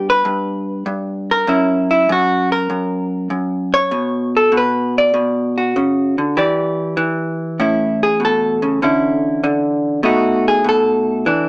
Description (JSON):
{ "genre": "solo jazz", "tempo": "98 BPM", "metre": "4/4", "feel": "swing 68% on 8ths", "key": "unclear", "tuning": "A4 = 438 Hz", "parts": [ { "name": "vintage hollow-body jazz guitar", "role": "solo", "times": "0.0-11.5 s", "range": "F#2 to D5", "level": "-14 LUFS", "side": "equal", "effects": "none" } ], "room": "moderate studio reverb, RT60 0.8 s", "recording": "small speaker sound", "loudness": "-14 LUFS", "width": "side -24 dB against mid", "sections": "0.0-11.5 A section", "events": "hollow-body jazz guitar solo 0.0-11.5", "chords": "0.0 G; 1.5 F#7; 3.9 Bmadd9; 6.4 Em7; 7.6 A; 8.8 Dsus2; 10.0 B7" }